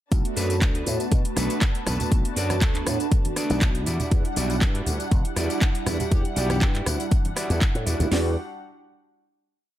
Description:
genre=filtered disco house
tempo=120 BPM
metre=4/4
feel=swing 54% on 16ths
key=E minor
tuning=A4 = 441 Hz
part: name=mellow synth brass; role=accompaniment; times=0.1-8.3 s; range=G3 to F#5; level=-30 LUFS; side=right 2 dB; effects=chorus, phaser, sidechain pumping
part: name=muted chamber string section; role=sustained chords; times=0.1-8.3 s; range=G3 to A5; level=-36 LUFS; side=left 2 dB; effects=sidechain pumping
part: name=slap bass with an envelope filter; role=bass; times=0.1-8.3 s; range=E1 to B2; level=-26 LUFS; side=equal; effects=tube saturation, sidechain pumping
part: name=house drum kit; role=drums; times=0.1-8.2 s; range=hi-hat, kick drum, snare drum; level=-21 LUFS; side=equal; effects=none
part: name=house drum kit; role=drums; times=0.1-8.1 s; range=handclaps, hi-hat, rim click, tambourine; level=-30 LUFS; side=equal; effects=sidechain pumping on hats, sidechain pumping on perc
part: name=maracas and congas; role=percussion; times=0.1-8.1 s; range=none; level=-34 LUFS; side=right 2 dB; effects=sidechain pumping on perc
part: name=clean electric guitar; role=riff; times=0.4-8.3 s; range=D4 to D5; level=-33 LUFS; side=right 1 dB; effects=sidechain pumping
part: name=clear horn section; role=melody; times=6.1-6.9 s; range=G4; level=-35 LUFS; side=equal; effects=vintage 12-bit sampler grit, sidechain pumping
room=digital ambience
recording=none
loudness=-21 LUFS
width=side -13 dB against mid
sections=0.1-8.1 drop; 8.1-9.8 final chord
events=drop 0.1-8.1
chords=0.1 Bm7; 3.9 Em9

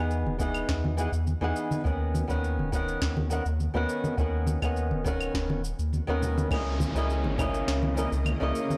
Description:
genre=sunset chillout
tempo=103 BPM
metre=4/4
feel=straight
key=C# dorian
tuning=A4 = 436 Hz
part: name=flamenco guitar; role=accompaniment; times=0.0-8.8 s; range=C#3 to F#5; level=-33 LUFS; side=equal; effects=tape echo
part: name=round analog bass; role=bass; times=0.0-8.5 s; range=D#1 to E2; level=-32 LUFS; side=equal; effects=none
part: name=electronic shaker, claves and snare drum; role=drums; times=0.1-8.8 s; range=none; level=-39 LUFS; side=equal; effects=overdrive
part: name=congas and bongos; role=percussion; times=0.3-8.8 s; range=none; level=-36 LUFS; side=equal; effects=none
part: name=electronic kick drum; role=drums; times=0.4-7.5 s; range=none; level=-34 LUFS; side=equal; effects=none
part: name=shimmering ambient pad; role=sustained chords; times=7.7-8.8 s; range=C#3 to D#5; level=-38 LUFS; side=equal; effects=chorus, built-in reverb
part: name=downlifter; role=sound effects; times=6.5-8.8 s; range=none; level=-42 LUFS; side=equal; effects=none
room=light reverb, digital ambience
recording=blown-out, overdriven recording, overdrive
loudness=-28 LUFS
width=mono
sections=0.0-6.5 A section; 6.5-8.8 B section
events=none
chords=0.0 Emaj7; 1.9 Bmaj7/D#; 6.5 C#m69

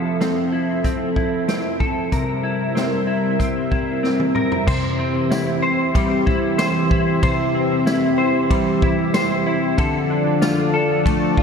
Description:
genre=dream pop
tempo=94 BPM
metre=4/4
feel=straight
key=unclear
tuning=A4 = 440 Hz
part: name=warm analog pad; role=sustained chords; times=0.0-11.4 s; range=E3 to E5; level=-20 LUFS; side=equal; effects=chorus
part: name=semi-hollow electric guitar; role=arpeggios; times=0.0-11.4 s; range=C3 to C5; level=-21 LUFS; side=left 2 dB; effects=ensemble chorus, ping-pong delay
part: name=vintage drum kit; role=drums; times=0.2-11.4 s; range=crash cymbal, hi-hat, kick drum, ride cymbal, snare drum, tambourine, toms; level=-23 LUFS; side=equal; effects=none
room=moderate lush hall reverb, RT60 3.1 s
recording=big arena sound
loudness=-17 LUFS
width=side -6 dB against mid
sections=0.0-4.7 A section; 4.7-11.4 B section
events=drum fill 4.0-4.7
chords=0.0 Fmaj7; 2.1 C7; 4.7 C; 9.8 Dm

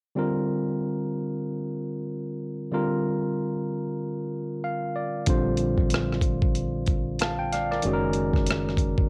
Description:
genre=R&B, neo-soul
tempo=94 BPM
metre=4/4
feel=swing 58% on 16ths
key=Bb major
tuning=A4 = 440 Hz
part: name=barky tine electric piano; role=accompaniment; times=0.2-9.1 s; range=D3 to A5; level=-29 LUFS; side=equal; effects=overdrive, cassette tape
part: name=mellow fretless electric bass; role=bass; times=5.3-9.1 s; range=Gb1 to Bb1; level=-33 LUFS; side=equal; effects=none
part: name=dusty soul sampler-style drum kit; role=drums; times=5.3-9.1 s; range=hi-hat, kick drum, rim click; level=-27 LUFS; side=equal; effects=overdrive, cassette tape
room=little or no reverb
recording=home recording on cassette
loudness=-27 LUFS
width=mono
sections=0.2-9.1 A section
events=tine electric piano fill 4.3-5.3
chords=0.2 Bbadd9; 7.8 Gbadd9

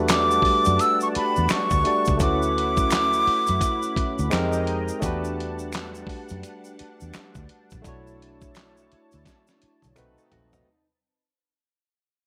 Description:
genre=R&B, neo-soul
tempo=85 BPM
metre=4/4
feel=swing 61% on 16ths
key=E dorian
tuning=A4 = 440 Hz
part: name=barky tine electric piano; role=accompaniment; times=0.0-10.7 s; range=Ab3 to D5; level=-30 LUFS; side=equal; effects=none
part: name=warm analog pad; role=sustained chords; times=0.0-10.7 s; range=G3 to B5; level=-36 LUFS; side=equal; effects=chorus
part: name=vintage muted fingered electric bass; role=bass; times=0.0-10.6 s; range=A#1 to F#2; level=-30 LUFS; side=equal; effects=none
part: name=breathy silver concert flute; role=melody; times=0.1-4.6 s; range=B5 to E6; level=-24 LUFS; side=equal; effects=none
part: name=dusty soul sampler-style drum kit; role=drums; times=0.1-10.7 s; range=handclaps, hi-hat, kick drum, snare drum, toms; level=-29 LUFS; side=equal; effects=none
part: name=finger snaps and tube shaker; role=percussion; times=0.1-10.7 s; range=none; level=-37 LUFS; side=equal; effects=none
part: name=archtop guitar, miked and amplified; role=second line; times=10.0-10.9 s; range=D#4 to B4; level=-73 LUFS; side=equal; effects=none
room=light reverb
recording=vinyl crackle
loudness=-22 LUFS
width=mono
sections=0.0-10.7 A section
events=fade-out 0.0-10.7; drum fill 9.3-10.7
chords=0.0 Em11; 2.2 Dmaj13; 4.3 Fm11; 5.0 Em11; 7.8 Bm11; 10.0 B7b9

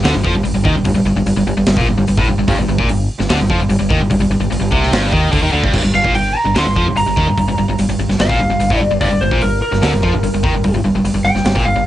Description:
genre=hard rock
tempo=147 BPM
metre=4/4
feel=straight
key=G minor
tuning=A4 = 440 Hz
part: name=overdriven electric guitar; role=riff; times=0.0-11.8 s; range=G2 to F3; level=-19 LUFS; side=right 6 dB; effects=phaser, cassette tape
part: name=tight distorted guitar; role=riff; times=0.0-11.8 s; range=G2 to F3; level=-19 LUFS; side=left 5 dB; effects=distortion, cassette tape
part: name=growling fingered electric bass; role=bass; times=0.0-11.9 s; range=G1 to F2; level=-19 LUFS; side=equal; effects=overdrive
part: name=big rock drum kit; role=drums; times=0.0-11.7 s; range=crash cymbal, hi-hat, kick drum, snare drum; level=-20 LUFS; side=equal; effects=cassette tape
part: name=lightly driven lead guitar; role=melody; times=6.0-11.9 s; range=Bb4 to C6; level=-18 LUFS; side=equal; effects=cassette tape
room=light reverb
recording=home recording on cassette, nothing above 10.5 kHz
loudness=-12 LUFS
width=side -13 dB against mid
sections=0.0-5.7 A section; 5.7-11.9 B section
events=lead electric guitar solo 5.7-11.9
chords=0.0 G5; 5.7 Gm

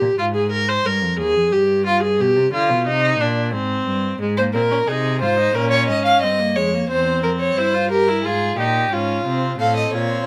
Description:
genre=classical, baroque-style fugue for string quartet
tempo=89 BPM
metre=4/4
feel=straight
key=F minor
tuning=A4 = 440 Hz
part: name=warm viola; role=accompaniment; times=0.0-10.3 s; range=Ab3 to C5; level=-22 LUFS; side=equal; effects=none
part: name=warm cello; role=bass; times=0.0-10.3 s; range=Eb2 to D3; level=-26 LUFS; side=equal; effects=none
part: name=rich violin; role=second line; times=4.4-10.3 s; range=F4 to F5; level=-21 LUFS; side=equal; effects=none
part: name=warm violin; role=melody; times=9.6-10.3 s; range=Db5 to F5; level=-23 LUFS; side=equal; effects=none
room=moderate studio reverb, RT60 0.7 s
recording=none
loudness=-19 LUFS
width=mono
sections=0.0-9.6 A section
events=none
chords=0.0 Cm; 1.5 G7; 2.9 Cm; 4.2 Fm/Ab; 5.5 Bbm; 6.9 C7/E; 8.2 Fm/Ab; 9.6 F7/A

